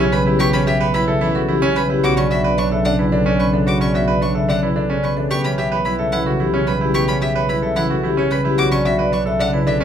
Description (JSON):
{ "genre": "classical, minimalist pattern music", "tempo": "110 BPM", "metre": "3/4", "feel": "straight", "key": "B minor", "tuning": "A4 = 440 Hz", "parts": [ { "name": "vibraphone with medium mallets", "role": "melody", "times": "0.0-9.8 s", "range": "G4 to E5", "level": "-22 LUFS", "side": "left 4 dB", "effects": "none" }, { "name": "concert harp", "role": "accompaniment", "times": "0.0-9.8 s", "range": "C#3 to B3", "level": "-21 LUFS", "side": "left 1 dB", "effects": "none" }, { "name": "clear grand piano", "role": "arpeggios", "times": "0.0-9.8 s", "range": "C#4 to B4", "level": "-21 LUFS", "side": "right 4 dB", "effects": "none" }, { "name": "warm double bass", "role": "bass", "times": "0.0-9.8 s", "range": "B1", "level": "-23 LUFS", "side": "right 3 dB", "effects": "none" }, { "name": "rich violin", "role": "arpeggios", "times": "0.1-9.8 s", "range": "E5 to D6", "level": "-26 LUFS", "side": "left 3 dB", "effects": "none" } ], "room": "moderate large studio reverb, RT60 0.8 s", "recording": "none", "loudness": "-15 LUFS", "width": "side -9 dB against mid", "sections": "0.0-9.8 A section", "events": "none", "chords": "0.0 A13/B (rootless); 2.0 Bm9; 5.3 A13/B (rootless); 8.6 Bm9", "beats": "| 0.40 0.94 1.49 | 2.04 2.58 3.13 | 3.67 4.22 4.76 | 5.31 5.85 6.40 | 6.94 7.49 8.04 | 8.58 9.13 9.67" }